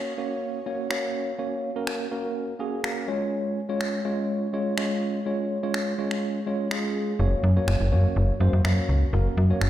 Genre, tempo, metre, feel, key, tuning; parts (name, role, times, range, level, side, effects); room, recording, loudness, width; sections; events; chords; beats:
dance-pop; 124 BPM; 4/4; straight; A4 = 440 Hz
tine electric piano; accompaniment; 0.0-9.7 s; Ab3 to Db5; -27 LUFS; equal; medium stereo tremolo
electronic finger snaps; drums; 0.9-9.7 s; -33 LUFS; equal
slap-like FM bass; bass; 7.2-9.7 s; Gb1 to Gb2; -20 LUFS; equal
moderate lush hall reverb, RT60 1.5 s; played on a big sound system in a bare room, large studio reverb; -23 LUFS; side -13 dB against mid
0.0-9.7 A section
0.0 Gb; 3.1 Db; 7.2 Gb
0.42 0.90 | 1.39 1.87 2.36 2.84 | 3.32 3.81 4.29 4.78 | 5.26 5.74 6.23 6.71 | 7.20 7.68 8.16 8.65 | 9.13 9.61